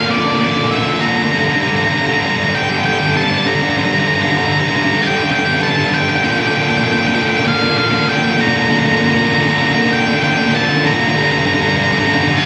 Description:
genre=rock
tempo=98 BPM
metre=4/4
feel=straight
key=G minor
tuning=A4 = 437 Hz
part: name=octave-fuzz lead guitar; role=melody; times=0.0-12.5 s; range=D5 to Bb5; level=-18 LUFS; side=equal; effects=distortion
part: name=distorted electric guitar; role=riff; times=0.0-12.5 s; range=G2 to D3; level=-16 LUFS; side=equal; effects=distortion
room=wet stone room reverb, RT60 1.3 s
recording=band playing live in one room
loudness=-14 LUFS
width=mono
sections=0.0-12.5 A section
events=build-up 0.0-12.5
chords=0.0 Bb; 1.3 Gm; 6.2 Bb; 11.2 Gm

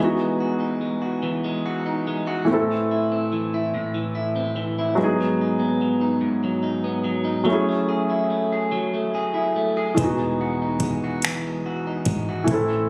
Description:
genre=slow six-eight R&B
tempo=48 BPM (dotted quarters)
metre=6/8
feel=straight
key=E major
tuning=A4 = 440 Hz
part: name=electric guitar at the edge of break-up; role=second line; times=0.0-12.9 s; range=G#2 to G#4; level=-27 LUFS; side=equal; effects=none
part: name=warm grand piano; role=accompaniment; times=0.0-12.9 s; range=E3 to A4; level=-26 LUFS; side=equal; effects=none
part: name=woody fretless electric bass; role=bass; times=10.0-12.9 s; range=E1 to A1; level=-32 LUFS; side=equal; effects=none
part: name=smooth R&B drum kit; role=drums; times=10.0-12.7 s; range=finger snaps, hi-hat, kick drum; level=-27 LUFS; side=equal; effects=none
room=light reverb, digital ambience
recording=recorded on a phone in the room, studio reverb, compression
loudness=-23 LUFS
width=mono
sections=0.0-12.9 A section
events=none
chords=0.0 Emaj9; 2.5 Am; 5.0 G#m7; 7.5 F#m9; 10.0 Emaj9

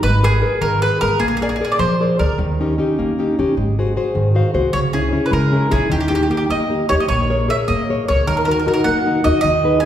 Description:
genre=italian folk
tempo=102 BPM (dotted quarters)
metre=6/8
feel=rubato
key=unclear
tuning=A4 = 440 Hz
part: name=bowl-back mandolin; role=melody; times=0.0-2.4, 4.7-9.9 s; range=G4 to G#5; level=-19 LUFS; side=right 2 dB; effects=none
part: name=nylon-string guitar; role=accompaniment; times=0.0-9.9 s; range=C#3 to E#5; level=-18 LUFS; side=left 2 dB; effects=none
part: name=upright bass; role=bass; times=0.0-9.8 s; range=G#1 to D#3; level=-20 LUFS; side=equal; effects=none
room=wet recital hall reverb, RT60 1.5 s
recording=heard from further back in the room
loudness=-15 LUFS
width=side -10 dB against mid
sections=0.0-9.9 A section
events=nylon-string guitar fill 4.2-4.7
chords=0.0 G#madd9; 1.2 A#7; 2.4 D#7; 3.6 G#7; 4.7 C#m; 5.9 D#; 7.1 A#m7; 8.3 D#m

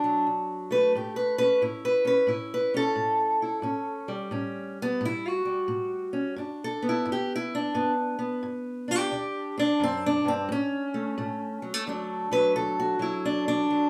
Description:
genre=acoustic country blues, solo or duo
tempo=88 BPM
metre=4/4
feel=swing 64% on 8ths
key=D major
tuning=A4 = 440 Hz
part: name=fingerpicked steel-string acoustic guitar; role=solo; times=0.0-13.9 s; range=D2 to B4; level=-27 LUFS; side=equal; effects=none
room=moderate studio reverb, RT60 0.7 s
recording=band playing live in one room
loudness=-27 LUFS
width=mono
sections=0.0-11.9 A section; 11.9-13.9 A section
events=steel-string acoustic guitar solo 0.0-11.9, 11.9-13.9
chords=0.0 D; 0.9 A7; 6.4 G; 9.1 D7; 10.5 A; 11.9 D

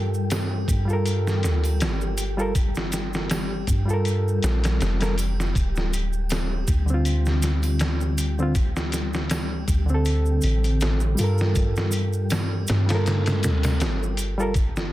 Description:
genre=trip hop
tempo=80 BPM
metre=4/4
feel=swing 55% on 16ths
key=unclear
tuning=A4 = 440 Hz
part: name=bright reed electric piano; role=accompaniment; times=0.0-14.5 s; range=D3 to Bb4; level=-28 LUFS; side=equal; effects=harmonic tremolo, tape echo
part: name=soft 808-style bass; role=bass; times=0.0-14.9 s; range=D1 to G2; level=-24 LUFS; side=equal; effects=tube saturation
part: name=wind-like tuned noise texture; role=texture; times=0.0-14.9 s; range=G3 to G4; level=-35 LUFS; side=left 3 dB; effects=built-in reverb
part: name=maracas and triangle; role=percussion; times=0.1-14.9 s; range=none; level=-37 LUFS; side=right 5 dB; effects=none
part: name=trip hop sampler-style drum kit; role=drums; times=0.3-14.9 s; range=hi-hat, kick drum, snare drum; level=-26 LUFS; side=equal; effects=soft clipping on snare
room=digital ambience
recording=dense, heavily limited modern master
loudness=-21 LUFS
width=side -15 dB against mid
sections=0.0-14.9 A section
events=none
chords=0.0 Gm9; 5.6 Dm7; 11.6 Gm9

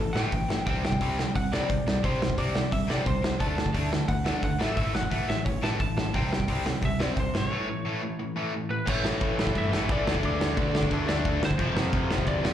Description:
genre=punk rock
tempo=176 BPM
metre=4/4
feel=straight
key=unclear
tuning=A4 = 439 Hz
part: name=lightly driven lead guitar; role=melody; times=0.0-12.5 s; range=A4 to A5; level=-33 LUFS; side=equal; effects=slapback echo
part: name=cranked stack guitar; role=riff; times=0.0-12.5 s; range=F2 to D4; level=-32 LUFS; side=left 9 dB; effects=overdrive, slapback echo
part: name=cranked stack guitar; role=riff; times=0.0-12.5 s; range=F2 to D4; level=-33 LUFS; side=right 8 dB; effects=overdrive
part: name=overdriven picked electric bass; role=bass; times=0.0-12.5 s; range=F1 to C3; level=-31 LUFS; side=equal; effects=none
part: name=loose indie drum kit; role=drums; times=0.2-12.5 s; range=crash cymbal, hi-hat, kick drum, ride cymbal, snare drum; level=-28 LUFS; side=equal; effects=none
part: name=tight distorted guitar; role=riff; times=8.9-12.5 s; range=F2 to D4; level=-34 LUFS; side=left 1 dB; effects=distortion, slapback echo
room=light reverb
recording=live gig heard through the venue's PA, club reverb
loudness=-24 LUFS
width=side -10 dB against mid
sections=0.0-8.9 A section; 8.9-12.5 B section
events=break 7.5-8.9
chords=0.0 A5; 0.7 C5; 3.4 D; 4.6 A5; 6.1 C5; 7.5 A; 10.1 D5; 11.6 F5

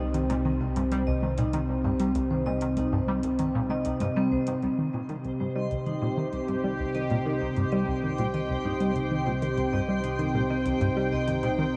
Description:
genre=ambient, sequencer-driven space music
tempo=97 BPM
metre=4/4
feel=straight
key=C minor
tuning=A4 = 437 Hz
part: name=sweeping resonant pad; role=sustained chords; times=0.0-11.8 s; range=C3 to G5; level=-31 LUFS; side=equal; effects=chorus
part: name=vibraphone with medium hard mallets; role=arpeggios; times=0.0-11.7 s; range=C4 to Eb5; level=-36 LUFS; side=equal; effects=low-pass filter, analog delay
part: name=tight sequenced synth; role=riff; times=0.0-11.8 s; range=C2 to G3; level=-32 LUFS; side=equal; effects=chorus, analog delay
part: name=round analog bass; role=bass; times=0.0-11.8 s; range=C2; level=-38 LUFS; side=equal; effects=none
part: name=electronic hi-hat and congas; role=percussion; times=0.1-11.7 s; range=none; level=-43 LUFS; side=equal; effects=analog delay
part: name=twinkling granular texture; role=texture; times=5.3-11.8 s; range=C5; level=-41 LUFS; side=equal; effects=built-in reverb
room=wet huge ambient reverb, RT60 8.9 s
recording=dark, warm production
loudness=-27 LUFS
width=mono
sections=0.0-4.6 A section; 4.6-11.8 B section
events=fade-in on analog synth bass 4.6-11.8; fade-in on drum 4.6-11.8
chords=0.0 Cm

